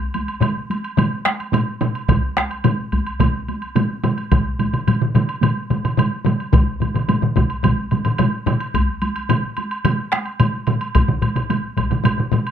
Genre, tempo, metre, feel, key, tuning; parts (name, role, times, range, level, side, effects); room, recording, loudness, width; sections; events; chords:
japanese traditional, taiko drum ensemble; 108 BPM; 4/4; straight
taiko ensemble; percussion; 0.0-12.5 s; -23 LUFS; equal
woodblock; percussion; 0.1-12.5 s; -27 LUFS; right 2 dB
taiko ensemble; percussion; 0.4-12.4 s; -22 LUFS; left 5 dB
taiko ensemble; percussion; 0.4-12.5 s; -21 LUFS; right 4 dB
taiko ensemble; percussion; 2.1-11.9 s; -20 LUFS; left 1 dB
light reverb; close, detailed microphones; -17 LUFS; side -9 dB against mid
0.0-12.5 A section